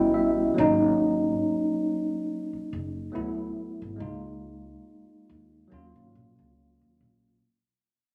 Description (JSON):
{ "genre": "R&B, neo-soul", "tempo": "70 BPM", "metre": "4/4", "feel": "swing 55% on 16ths", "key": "unclear", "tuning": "A4 = 439 Hz", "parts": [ { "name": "tine electric piano", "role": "accompaniment", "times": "0.0-7.4 s", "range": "Gb3 to G5", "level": "-27 LUFS", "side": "equal", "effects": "overdrive" }, { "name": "upright bass", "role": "bass", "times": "0.0-7.4 s", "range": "Gb1 to Eb2", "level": "-40 LUFS", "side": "equal", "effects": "none" } ], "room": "wet large studio reverb, RT60 1.2 s", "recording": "none", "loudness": "-26 LUFS", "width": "mono", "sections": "0.0-7.4 A section", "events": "fade-out 0.0-7.4; tine electric piano fill 0.0-0.6", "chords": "0.0 A9; 0.6 Ab7sus4; 3.1 D6; 4.0 Db6; 5.7 Ebm9", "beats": "| 0.55 1.41 2.27 3.12 | 3.98 4.84 5.70 6.55" }